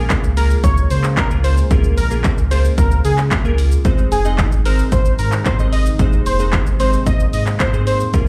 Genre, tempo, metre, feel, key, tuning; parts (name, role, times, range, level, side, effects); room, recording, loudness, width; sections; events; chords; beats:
dance-pop; 112 BPM; 4/4; straight; Ab major; A4 = 439 Hz
glassy digital keys; accompaniment; 0.0-8.3 s; Ab3 to Eb5; -28 LUFS; equal; chorus, sidechain pumping, slapback echo
chorused pulse-width pad; sustained chords; 0.0-8.3 s; C3 to F4; -32 LUFS; equal; sidechain pumping
warm sub bass; bass; 0.0-8.3 s; F1 to Db3; -19 LUFS; equal; sidechain pumping
punchy analog drum machine; drums; 0.1-8.3 s; handclaps, hi-hat, kick drum, shaker; -20 LUFS; equal
octave-doubled lead; melody; 0.4-8.0 s; Ab4 to Eb5; -25 LUFS; equal; chorus, digital delay
digital ambience; live gig heard through the venue's PA, club reverb; -16 LUFS; mono
0.0-8.3 A section
0.0 Db6; 3.9 Ab
0.10 0.64 1.17 | 1.71 2.24 2.78 3.31 | 3.85 4.39 4.92 5.46 | 5.99 6.53 7.06 7.60 | 8.14